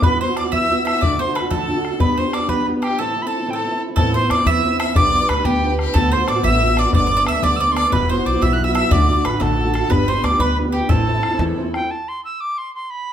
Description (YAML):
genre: celtic folk, Celtic jig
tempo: 121 BPM (dotted quarters)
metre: 6/8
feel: straight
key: A dorian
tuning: A4 = 441 Hz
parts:
  - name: reedy mid whistle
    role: melody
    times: 0.0-13.1 s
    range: G5 to F#6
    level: -21 LUFS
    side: equal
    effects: none
  - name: bowl-back mandolin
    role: second line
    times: 0.0-11.7 s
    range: G4 to E5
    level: -25 LUFS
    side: right 6 dB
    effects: none
  - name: clear fiddle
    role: second line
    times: 0.0-11.7 s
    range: G4 to E5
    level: -28 LUFS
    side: left 5 dB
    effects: none
  - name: fingerpicked steel-string acoustic guitar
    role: accompaniment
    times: 0.0-11.9 s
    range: D2 to B4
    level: -21 LUFS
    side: right 1 dB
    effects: none
  - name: bodhran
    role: percussion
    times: 0.0-11.8 s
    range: none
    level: -22 LUFS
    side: left 2 dB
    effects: none
  - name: upright bass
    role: bass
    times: 4.0-11.8 s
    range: E1 to E2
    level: -22 LUFS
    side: equal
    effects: none
room: moderate large studio reverb, RT60 0.8 s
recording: band playing live in one room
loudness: -16 LUFS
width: side -9 dB against mid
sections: 0.0-4.0 A section; 4.0-11.9 A section; 11.9-13.1 B section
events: break 3.0-4.0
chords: 0.0 Emadd9; 1.0 D; 2.0 G; 3.0 Am; 4.0 Amadd9; 5.0 G/B; 5.9 D6; 6.9 Gadd9; 7.9 Emadd9; 8.9 D; 9.9 G; 10.9 Am; 11.9 N.C.